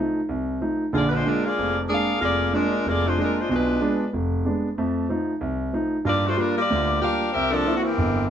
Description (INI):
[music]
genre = jazz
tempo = 187 BPM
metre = 4/4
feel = swing 63% on 8ths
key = unclear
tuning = A4 = 440 Hz
[part]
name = clear concert grand piano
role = accompaniment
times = 0.0-8.3 s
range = F1 to F4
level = -23 LUFS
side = right 1 dB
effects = none
[part]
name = clear saxophone section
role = melody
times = 0.9-8.3 s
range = E3 to F5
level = -22 LUFS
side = left 1 dB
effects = plate reverb
[sound]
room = wet club reverb, RT60 0.7 s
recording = heard from further back in the room, nothing above 8.0 kHz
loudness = -21 LUFS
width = side -9 dB against mid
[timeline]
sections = 0.0-8.3 A section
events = none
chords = 0.0 F7; 0.9 Bb7; 3.5 Bdim7; 4.8 F7; 6.1 Gm7; 7.3 C7